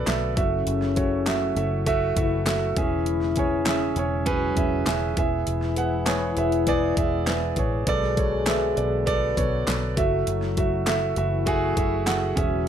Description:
piano-driven pop; 100 BPM; 4/4; straight; F# minor; A4 = 442 Hz
dark French horn section; second line; 0.0-12.7 s; C#3 to G#4; -29 LUFS; left 7 dB
dark baby grand piano; accompaniment; 0.0-12.7 s; B2 to F#5; -25 LUFS; right 4 dB
mellow tonewheel organ; sustained chords; 0.0-12.7 s; B2 to F#4; -34 LUFS; left 1 dB; slow rotary speaker
vintage muted fingered electric bass; bass; 0.0-12.7 s; E1 to B1; -28 LUFS; equal
pop drum kit; drums; 0.1-12.5 s; handclaps, hi-hat, kick drum, snare drum; -28 LUFS; equal; overdrive
light reverb; -21 LUFS; side -9 dB against mid
0.0-12.7 A section
0.4 F#m7; 2.8 C#m/E; 5.2 E; 7.9 Bm7; 10.0 F#m7

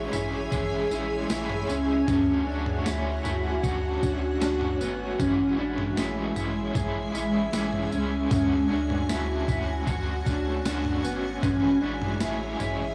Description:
dream pop; 77 BPM; 4/4; straight; A major; A4 = 440 Hz
crunchy overdriven guitar; accompaniment; 0.0-12.9 s; A2 to F#4; -36 LUFS; equal; tremolo, subtle chorus
granular cloud pad; sustained chords; 0.0-12.9 s; G#3 to G#5; -34 LUFS; equal; built-in reverb
mellow electric guitar; arpeggios; 0.0-12.9 s; B3 to G#4; -31 LUFS; equal; lush chorus, analog delay
warm sub bass; bass; 0.0-12.9 s; G#1 to D2; -35 LUFS; equal
gated 80s digital drum machine; drums; 0.1-12.8 s; kick drum, snare drum, tambourine, toms; -32 LUFS; equal; gated reverb, gated reverb snare, overdrive
little or no reverb; dry, gritty hardware recording, studio ambience; -27 LUFS; mono
0.0-12.9 A section
0.0 Amaj7; 2.1 Dmaj7; 5.2 Amaj7; 8.3 Dmaj7; 11.4 Amaj7

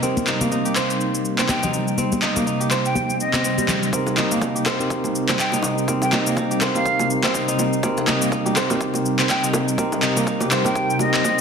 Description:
afro house; 123 BPM; 4/4; swing 57% on 16ths; C minor pentatonic; A4 = 437 Hz
ethereal airy pad; sustained chords; 0.0-11.4 s; C3 to G4; -25 LUFS; left 1 dB; ensemble chorus, built-in reverb, sidechain pumping
kora; arpeggios; 0.0-11.4 s; G3 to C5; -25 LUFS; right 1 dB; vintage 12-bit sampler grit, sidechain pumping, low-pass filter, digital delay
tine electric piano; stabs; 0.0-11.4 s; C4 to Bb4; -26 LUFS; right 2 dB; medium tremolo, sidechain pumping, low-pass filter, digital delay
electronic shaker and handclaps; drums; 0.0-11.4 s; -24 LUFS; left 1 dB; high-pass filter on perc, studio reverb, high-pass filter on snare
congas; percussion; 0.2-3.8 s; -28 LUFS; left 3 dB
jazz flute; melody; 1.5-11.4 s; Eb5 to G5; -25 LUFS; equal; digital delay
swell; sound effects; 3.1-3.9 s; -29 LUFS; right 2 dB
electronic kick drum; drums; 3.9-11.4 s; -30 LUFS; equal
bongos; percussion; 4.1-11.4 s; -27 LUFS; right 2 dB
moderate lush hall reverb, RT60 1.7 s, small room ambience; dense, heavily limited modern master; -18 LUFS; side -6 dB against mid
0.0-3.9 A section; 3.9-11.4 B section
filter sweep on ambient pad 0.0-3.9; swell 3.1-3.9; build-up 3.9-11.4
0.0 Cm7

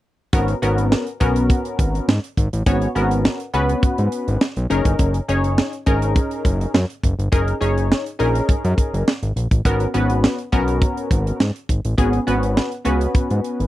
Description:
early-eighties boogie funk; 103 BPM; 4/4; straight; G# minor; A4 = 438 Hz
funky polysynth comp; accompaniment; 0.3-13.7 s; B3 to C#5; -21 LUFS; left 1 dB; chorus
fat analog bass; bass; 0.3-13.7 s; F#1 to G#2; -20 LUFS; equal
tight funk drum kit; drums; 0.3-13.7 s; hi-hat, kick drum, snare drum; -19 LUFS; equal
little or no reverb; dry, close 1970s-style studio recording; -17 LUFS; side -15 dB against mid
0.3-13.7 A section
0.3 G#m11; 4.7 F#69; 9.7 G#m11

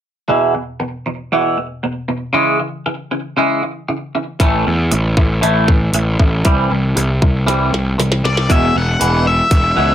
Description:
quiet-loud alternative rock; 117 BPM; 4/4; straight; A4 = 441 Hz
twangy electric guitar; arpeggios; 0.3-9.9 s; E2 to A3; -17 LUFS; right 1 dB; phaser, slapback echo
fuzz picked electric bass; bass; 4.4-9.9 s; E1 to E2; -16 LUFS; equal; overdrive
glitchy drum kit; drums; 4.4-9.6 s; hi-hat, kick drum, snare drum; -15 LUFS; equal
octave-fuzz lead guitar; melody; 8.2-9.9 s; D5 to F#5; -16 LUFS; left 2 dB; distortion, slapback echo
light reverb; -13 LUFS; side -10 dB against mid
0.3-8.5 A section; 8.5-9.9 B section
drum fill 7.5-8.5
0.3 E5; 2.3 C#m; 4.4 A5; 6.5 C; 8.5 E5

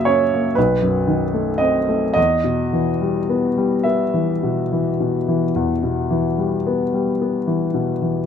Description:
classical, romantic nocturne for solo piano; 35-42 BPM (dotted quarters); 12/8; rubato; E minor; A4 = 440 Hz
clear grand piano; solo; 0.0-8.3 s; B1 to E5; -17 LUFS; left 1 dB
light reverb; close, detailed microphones; -17 LUFS; side -7 dB against mid
0.0-8.3 A section
0.0 F#; 0.6 B7b9; 2.2 Em

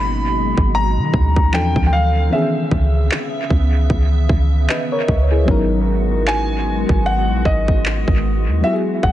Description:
contemporary R&B; 76 BPM; 4/4; swing 58% on 16ths; G# minor; A4 = 443 Hz
warm concert grand piano; melody; 0.0-9.1 s; D#5 to B5; -22 LUFS; left 1 dB; dub echo
mellow FM electric piano; accompaniment; 0.0-9.1 s; D#3 to D#5; -22 LUFS; left 2 dB; chorus, dub echo
glassy FM pad; sustained chords; 0.0-9.1 s; B2 to F5; -26 LUFS; equal; ensemble chorus, built-in reverb
soft 808-style bass; bass; 0.0-9.1 s; E1 to D#3; -17 LUFS; equal
trap drum kit; drums; 0.6-9.1 s; handclaps, kick drum; -19 LUFS; equal; dub echo
little or no reverb; echo-heavy mix, nothing above 10.5 kHz; -14 LUFS; side -13 dB against mid
0.0-9.1 A section
0.0 G#m11; 1.5 Dm7; 2.3 C#m7; 5.5 G#m11

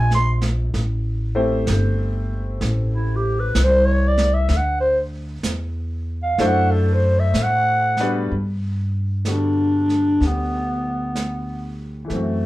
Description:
jazz ballad; 63 BPM; 4/4; swing 66% on 8ths; G major; A4 = 441 Hz
growling clarinet; melody; 0.0-12.5 s; A3 to B#5; -20 LUFS; equal
clear grand piano; accompaniment; 0.0-12.5 s; D3 to C5; -26 LUFS; left 2 dB
upright bass; bass; 0.0-12.5 s; G1 to A2; -21 LUFS; equal
vintage brush drum kit; drums; 0.1-12.5 s; brushed snare drum, hi-hat, snare drum; -26 LUFS; right 2 dB
moderate studio reverb, RT60 0.5 s; band playing live in one room; -18 LUFS; side -17 dB against mid
0.0-8.3 A section; 8.3-12.5 B section
clarinet solo 0.0-8.3
0.0 E7alt; 0.7 Am7; 4.5 D9; 8.3 Gmaj7

